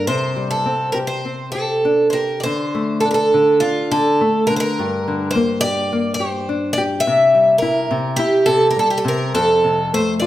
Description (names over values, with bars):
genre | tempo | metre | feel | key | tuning
fado-style ballad | 104 BPM | 4/4 | rubato | unclear | A4 = 440 Hz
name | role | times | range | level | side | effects
picked twelve-string acoustic guitar | melody | 0.0-10.3 s | F4 to E5 | -16 LUFS | right 1 dB | none
nylon-string guitar | accompaniment | 0.0-10.3 s | F2 to G4 | -21 LUFS | left 2 dB | none
room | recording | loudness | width
moderate recital hall reverb, RT60 1.8 s | none | -15 LUFS | side -13 dB against mid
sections
0.0-10.3 A section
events
none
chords
0.1 Csus2; 2.5 D5; 4.8 Gm; 7.1 C7; 9.3 F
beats
| 0.09 0.67 1.25 1.86 | 2.46 3.06 3.64 4.22 | 4.79 5.36 5.91 6.48 | 7.05 7.62 8.18 8.76 | 9.33 9.91